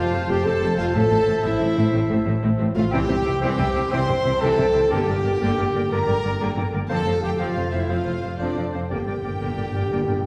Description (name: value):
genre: cinematic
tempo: 121 BPM (dotted quarters)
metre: 12/8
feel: straight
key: G dorian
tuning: A4 = 441 Hz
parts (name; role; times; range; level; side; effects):
- rich symphonic violin section; melody; 0.0-10.3 s; C5 to C6; -40 LUFS; equal; none
- bright clarinet; second line; 0.0-10.2 s; Bb4 to C5; -36 LUFS; equal; none
- clear oboe; second line; 0.0-10.2 s; C5 to E5; -39 LUFS; equal; none
- clear symphonic violin section; second line; 0.0-10.3 s; C5 to C6; -38 LUFS; equal; none
- silver concert flute; second line; 0.0-10.1 s; F5 to A5; -38 LUFS; equal; none
- clear symphonic viola section; accompaniment; 0.0-10.2 s; D3 to C4; -34 LUFS; equal; none
- mellow French horn section; sustained chords; 0.0-10.3 s; C4 to C5; -27 LUFS; equal; none
- concert harp; arpeggios; 0.0-10.3 s; F2 to C6; -33 LUFS; equal; none
- warm trumpet section; stabs; 0.0-10.3 s; C4 to C5; -32 LUFS; equal; none
- rich symphonic cello section; bass; 0.0-10.2 s; F2 to C3; -30 LUFS; equal; none
- rich symphonic double bass section; bass; 0.1-10.3 s; F1 to C2; -30 LUFS; equal; none
- timpani; percussion; 4.9-5.4, 8.9-10.3 s; G2; -33 LUFS; equal; none
room: wet scoring stage reverb, RT60 1.8 s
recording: heard from further back in the room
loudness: -22 LUFS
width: mono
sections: 0.0-10.3 A section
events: timpani fill 8.9-10.3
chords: 0.0 F; 0.9 Am; 2.9 C; 4.9 Gm; 6.9 F; 8.9 Gm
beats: 0.45 | 0.94 1.44 1.94 2.43 | 2.93 3.42 3.92 4.41 | 4.91 5.41 5.90 6.40 | 6.89 7.39 7.89 8.39 | 8.90 9.41 9.92